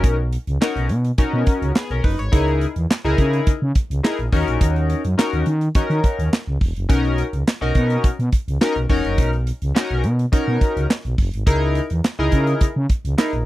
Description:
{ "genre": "early-eighties boogie funk", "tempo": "105 BPM", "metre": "4/4", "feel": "straight", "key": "C# dorian", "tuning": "A4 = 439 Hz", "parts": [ { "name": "chorused polysynth", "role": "accompaniment", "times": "0.0-13.3 s", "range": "B3 to C#5", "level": "-22 LUFS", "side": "left 2 dB", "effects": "none" }, { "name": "growling FM bass", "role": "bass", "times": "0.0-13.4 s", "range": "E1 to D#3", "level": "-20 LUFS", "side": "equal", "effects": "none" }, { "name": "modern studio drum kit", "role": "drums", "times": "0.0-13.5 s", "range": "handclaps, hi-hat, kick drum, snare drum", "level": "-18 LUFS", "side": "equal", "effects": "none" } ], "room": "little or no reverb", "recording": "dry, close 1970s-style studio recording", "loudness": "-17 LUFS", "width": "side -16 dB against mid", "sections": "0.0-13.5 A section", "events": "none", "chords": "0.0 Bmaj9; 2.3 C#m69; 4.3 D#m7; 6.9 Bmaj9; 11.5 C#m69" }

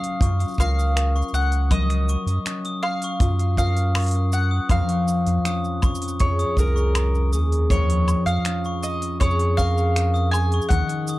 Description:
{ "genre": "folktronica", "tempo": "80 BPM", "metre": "4/4", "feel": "straight", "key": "Db major", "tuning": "A4 = 440 Hz", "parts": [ { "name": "mandolin", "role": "melody", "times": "0.0-11.2 s", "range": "Bb4 to Ab5", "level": "-27 LUFS", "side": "equal", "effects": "digital delay" }, { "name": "concert harp", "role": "arpeggios", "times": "0.0-11.2 s", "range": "F2 to Bb4", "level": "-26 LUFS", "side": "left 2 dB", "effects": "digital delay" }, { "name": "organic electronic drum kit", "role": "drums", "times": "0.0-11.2 s", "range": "cabasa, finger snaps, hi-hat, woodblock", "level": "-31 LUFS", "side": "equal", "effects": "none" }, { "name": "glockenspiel with hard plastic mallets", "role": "second line", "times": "0.2-11.2 s", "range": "Db6 to Eb6", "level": "-32 LUFS", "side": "left 1 dB", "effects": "digital delay" }, { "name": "warm sub bass", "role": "bass", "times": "0.2-10.8 s", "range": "C2 to Gb2", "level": "-20 LUFS", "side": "equal", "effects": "none" }, { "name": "kick drum", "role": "drums", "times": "0.2-10.9 s", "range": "none", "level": "-21 LUFS", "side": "equal", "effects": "none" } ], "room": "light reverb", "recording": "dark, warm production", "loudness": "-19 LUFS", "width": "side -17 dB against mid", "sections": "0.0-11.2 A section", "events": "none", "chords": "0.0 Gbmaj7; 4.7 Db6" }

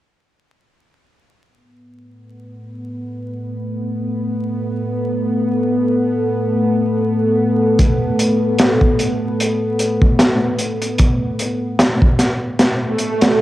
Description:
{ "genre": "trip hop", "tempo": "75 BPM", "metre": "4/4", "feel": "swing 56% on 16ths", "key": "unclear", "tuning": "A4 = 440 Hz", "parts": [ { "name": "deep dark ambient pad", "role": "sustained chords", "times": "2.8-13.4 s", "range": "A3 to A4", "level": "-20 LUFS", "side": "equal", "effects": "chorus, built-in reverb" }, { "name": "bowed-like drone", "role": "texture", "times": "2.8-13.4 s", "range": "B3", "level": "-23 LUFS", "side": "equal", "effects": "built-in reverb" }, { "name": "crunchy breakbeat drum kit", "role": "drums", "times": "7.8-13.4 s", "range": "hi-hat, kick drum, snare drum", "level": "-14 LUFS", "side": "equal", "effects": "cassette tape" }, { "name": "swell", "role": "sound effects", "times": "12.9-13.4 s", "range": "none", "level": "-18 LUFS", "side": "right 2 dB", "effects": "none" } ], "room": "moderate booth ambience, RT60 0.3 s", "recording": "home recording on cassette, vinyl crackle", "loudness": "-15 LUFS", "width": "side -15 dB against mid", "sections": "1.4-13.4 A section", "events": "filter sweep on ambient pad 1.4-13.4; swell 12.9-13.4", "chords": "1.4 Asus2" }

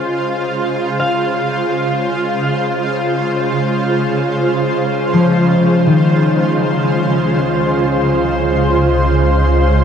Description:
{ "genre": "ambient", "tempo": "free time", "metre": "none", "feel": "none", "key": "Db major", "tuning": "A4 = 440 Hz", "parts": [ { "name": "shimmering ambient pad", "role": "sustained chords", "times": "0.0-9.8 s", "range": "Db3 to C5", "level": "-14 LUFS", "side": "right 1 dB", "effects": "chorus, built-in reverb, shimmer reverb" }, { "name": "concert harp", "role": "arpeggios", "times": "1.0-7.1 s", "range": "Eb3 to F5", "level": "-18 LUFS", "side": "left 2 dB", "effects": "diffuse ambient delay" }, { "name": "warm sub bass", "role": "bass", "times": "7.1-9.8 s", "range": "Db2", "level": "-17 LUFS", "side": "equal", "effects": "none" } ], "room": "wet huge ambient reverb, RT60 7.4 s", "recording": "cassette tape", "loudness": "-13 LUFS", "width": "side -8 dB against mid", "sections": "0.0-7.1 A section; 7.1-9.8 A section", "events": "none", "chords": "0.0 Dbmaj7" }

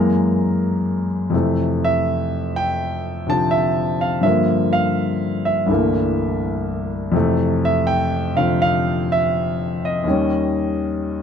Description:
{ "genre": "solo jazz", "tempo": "83 BPM", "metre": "4/4", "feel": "swing 69% on 8ths", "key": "F major", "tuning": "A4 = 440 Hz", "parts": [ { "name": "clear concert grand piano", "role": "solo", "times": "0.0-11.2 s", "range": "C2 to Bb5", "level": "-17 LUFS", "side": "left 1 dB", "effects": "none" } ], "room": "light reverb", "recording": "none", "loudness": "-17 LUFS", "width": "side -7 dB against mid", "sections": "0.0-7.1 A section; 7.1-11.2 A section", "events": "none", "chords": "0.0 Gb9; 1.3 Fmaj7; 4.2 Gm7; 5.7 C13; 7.1 Fmaj7; 10.1 Eb7" }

